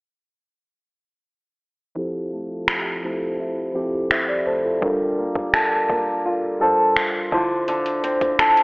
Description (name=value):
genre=contemporary R&B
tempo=84 BPM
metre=4/4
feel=straight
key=F major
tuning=A4 = 440 Hz
part: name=muted felt-like synth keys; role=accompaniment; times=1.9-8.6 s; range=D3 to E5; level=-23 LUFS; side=equal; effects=chorus, low-pass filter
part: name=flamenco guitar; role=arpeggios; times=2.0-8.6 s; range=D3 to A4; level=-22 LUFS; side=equal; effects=low-pass filter, tape echo
part: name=smooth R&B drum kit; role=drums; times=2.7-8.6 s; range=finger snaps, hi-hat, kick drum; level=-22 LUFS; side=equal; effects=none
room=moderate plate reverb, RT60 2.7 s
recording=telephone sound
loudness=-19 LUFS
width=side -35 dB against mid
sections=2.0-8.6 A section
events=filter sweep 2.0-8.6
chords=2.0 Fmaj9; 4.8 Gm9; 7.3 Dm7